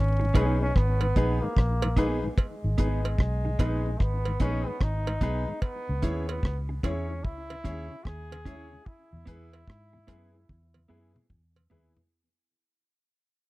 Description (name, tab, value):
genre	roots reggae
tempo	74 BPM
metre	4/4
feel	swing 64% on 16ths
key	G# minor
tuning	A4 = 441 Hz
part	bright trombone	melody	0.0-11.3 s	G#3 to G#4	-35 LUFS	equal	tape echo
part	vintage muted fingered electric bass	bass	0.0-11.9 s	G#1 to G#2	-28 LUFS	equal	none
part	mellow electric guitar	accompaniment	0.2-11.9 s	B3 to G#4	-35 LUFS	right 4 dB	spring reverb, tape echo
part	mellow tonewheel organ	accompaniment	0.2-12.0 s	E2 to E4	-38 LUFS	left 1 dB	chorus vibrato, slow rotary speaker, tape echo
part	clear baby grand piano	stabs	0.3-12.0 s	D#4 to C#5	-35 LUFS	left 4 dB	none
part	deep reggae drum kit	drums	0.3-12.1 s	hi-hat, kick drum, rim click, toms	-25 LUFS	equal	none
part	cowbell	percussion	0.4-11.7 s	none	-36 LUFS	right 6 dB	none
room	little or no reverb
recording	dry, close 1970s-style studio recording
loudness	-25 LUFS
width	side -19 dB against mid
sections	0.0-12.1 A section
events	fade-out 0.0-12.1; drum fill 10.5-12.1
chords	0.0 G#m; 5.6 C#m; 8.9 E